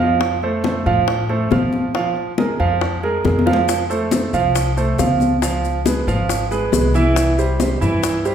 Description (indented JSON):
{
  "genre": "latin, Cuban son and guajira",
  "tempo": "138 BPM",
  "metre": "4/4",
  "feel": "straight",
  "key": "unclear",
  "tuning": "A4 = 441 Hz",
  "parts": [
    { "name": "clear concert grand piano", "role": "arpeggios", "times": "0.0-8.3 s", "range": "E3 to F5", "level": "-19 LUFS", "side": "right 4 dB", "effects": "none" },
    { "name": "upright bass", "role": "bass", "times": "0.0-8.3 s", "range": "Ab1 to Bb2", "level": "-21 LUFS", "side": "left 1 dB", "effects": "none" },
    { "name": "bongos", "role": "percussion", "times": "0.2-8.3 s", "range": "none", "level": "-25 LUFS", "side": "left 6 dB", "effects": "none" },
    { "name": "congas", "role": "percussion", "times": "0.2-8.3 s", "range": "none", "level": "-23 LUFS", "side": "left 2 dB", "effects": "none" },
    { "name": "maracas", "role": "percussion", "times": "3.7-8.3 s", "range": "none", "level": "-31 LUFS", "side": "left 8 dB", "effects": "none" }
  ],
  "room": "wet recital hall reverb, RT60 1.3 s",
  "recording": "recorded in a church or concert hall",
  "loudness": "-15 LUFS",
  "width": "side -8 dB against mid",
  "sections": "0.0-8.3 A section",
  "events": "drum fill 3.2-3.7",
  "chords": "0.2 F; 1.9 Bb5; 3.7 F; 5.4 Db7; 7.2 C"
}